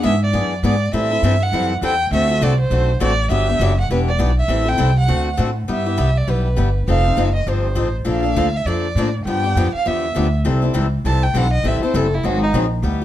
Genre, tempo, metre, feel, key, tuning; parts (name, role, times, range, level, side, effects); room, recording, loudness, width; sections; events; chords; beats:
acoustic string swing (jazz manouche); 202 BPM; 4/4; swing 59% on 8ths; G major; A4 = 437 Hz
warm violin; melody; 0.0-12.5 s; Eb4 to A5; -22 LUFS; right 2 dB
picked swing-style acoustic guitar; accompaniment; 0.0-13.0 s; C3 to A4; -22 LUFS; left 3 dB
upright bass; bass; 0.0-13.0 s; E1 to A2; -18 LUFS; equal
light reverb; dark, warm production; -16 LUFS; side -12 dB against mid
0.0-5.7 A section; 5.7-13.0 B section
violin solo 5.7-13.0
0.0 E7; 0.9 Am7; 2.1 D7; 3.3 Gmaj7; 3.9 Em7; 4.5 Am7; 5.1 D7; 5.7 G6; 6.9 F7; 8.1 Bbmaj7; 9.3 G7; 10.5 C6; 11.6 Am7; 12.2 Ab9
0.04 0.33 0.63 | 0.93 1.23 1.52 1.82 | 2.12 2.42 2.71 3.01 | 3.31 3.60 3.90 4.20 | 4.50 4.79 5.09 5.39 | 5.69 5.99 6.28 6.58 | 6.88 7.18 7.47 7.77 | 8.07 8.37 8.67 8.96 | 9.26 9.56 9.86 10.16 | 10.45 10.75 11.05 11.35 | 11.65 11.95 12.24 12.54 | 12.84